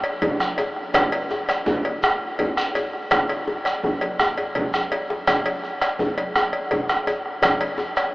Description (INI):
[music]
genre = west african traditional, West African drum ensemble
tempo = 111 BPM (dotted quarters)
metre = 12/8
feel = straight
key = none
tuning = none
[part]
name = cowbell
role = percussion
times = 0.0-8.1 s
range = none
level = -26 LUFS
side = left 1 dB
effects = none
[part]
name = bombo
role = percussion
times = 0.2-8.1 s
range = none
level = -23 LUFS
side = right 1 dB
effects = none
[part]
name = congas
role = percussion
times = 0.2-7.6 s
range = none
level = -30 LUFS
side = right 1 dB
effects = none
[part]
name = djembe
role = percussion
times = 0.2-8.0 s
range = none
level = -28 LUFS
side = left 1 dB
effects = none
[part]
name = shekere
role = percussion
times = 0.4-8.1 s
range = none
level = -36 LUFS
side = equal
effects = none
[sound]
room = wet huge ambient reverb, RT60 7.1 s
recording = in a vast, echoing space, AM radio sound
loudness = -20 LUFS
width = side -21 dB against mid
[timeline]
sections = 0.0-8.1 A section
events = drum fill 4.4-5.3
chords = none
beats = 0.40 | 0.95 1.49 2.03 2.57 | 3.12 3.66 4.20 4.74 | 5.28 5.82 6.36 6.89 | 7.43 7.97